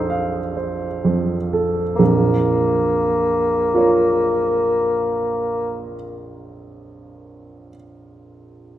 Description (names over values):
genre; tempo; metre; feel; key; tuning
classical, romantic duo for bassoon and grand piano; 35 BPM; 4/4; rubato; Bb minor; A4 = 439 Hz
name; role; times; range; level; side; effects
mellow bassoon; melody; 0.0-5.9 s; Bb3; -19 LUFS; left 1 dB; none
clear baby grand piano; accompaniment; 0.0-8.8 s; Bb1 to F5; -20 LUFS; right 2 dB; none
room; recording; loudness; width
moderate recital hall reverb, RT60 1.7 s; none; -16 LUFS; side -12 dB against mid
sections
0.0-2.0 A section; 2.0-8.8 B section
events
slowing down 0.0-2.0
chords
0.0 F/Bb; 2.0 Bbm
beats
0.10 | 1.99 3.72 5.42 7.14